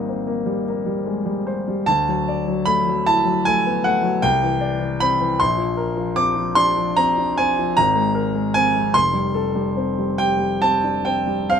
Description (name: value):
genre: classical, impressionist solo piano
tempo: 50 BPM (dotted quarters)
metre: 9/8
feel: rubato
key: unclear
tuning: A4 = 441 Hz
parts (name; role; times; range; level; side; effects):
- warm concert grand piano; solo; 0.0-11.6 s; F1 to D6; -17 LUFS; equal; none
room: light reverb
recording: close, detailed microphones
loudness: -17 LUFS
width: side -7 dB against mid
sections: 0.0-11.6 A section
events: none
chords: 0.0 Cm7/Ab; 1.9 Dadd9; 4.2 Cadd9; 5.4 Bbadd9; 7.8 Abadd9; 8.9 Fadd9